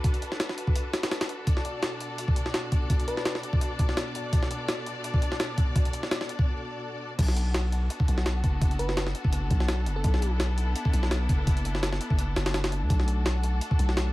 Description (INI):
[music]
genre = drum and bass, jungle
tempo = 168 BPM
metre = 4/4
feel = swing 54% on 16ths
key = B minor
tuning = A4 = 440 Hz
[part]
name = rich symphonic string section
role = sustained chords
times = 0.0-14.1 s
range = B2 to D5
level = -34 LUFS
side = left 1 dB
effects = none
[part]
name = jungle sampler-style drum kit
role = drums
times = 0.0-14.1 s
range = crash cymbal, hi-hat, kick drum, snare drum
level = -26 LUFS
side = equal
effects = none
[part]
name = bell-like FM electric piano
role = melody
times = 3.1-3.4, 8.8-10.3 s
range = A4 to B4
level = -37 LUFS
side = left 1 dB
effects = chorus, cassette tape, low-pass filter, dub echo
[part]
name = long sustained 808-style bass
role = bass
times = 7.2-14.1 s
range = F#1 to D2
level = -27 LUFS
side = equal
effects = none
[sound]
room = little or no reverb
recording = vinyl crackle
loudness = -25 LUFS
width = side -18 dB against mid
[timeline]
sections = 0.0-7.2 A section; 7.2-14.1 B section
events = build-up 0.0-7.2; break 6.5-7.2; drop 7.2-14.1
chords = 0.0 Bm7; 1.5 D/B; 7.2 Bm7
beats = | 0.04 0.40 0.76 1.11 | 1.47 1.83 2.19 2.54 | 2.90 3.26 3.61 3.97 | 4.33 4.68 5.04 5.40 | 5.76 6.11 6.47 6.83 | 7.18 7.54 7.90 8.26 | 8.61 8.97 9.33 9.69 | 10.04 10.40 10.76 11.11 | 11.47 11.83 12.19 12.54 | 12.90 13.26 13.61 13.97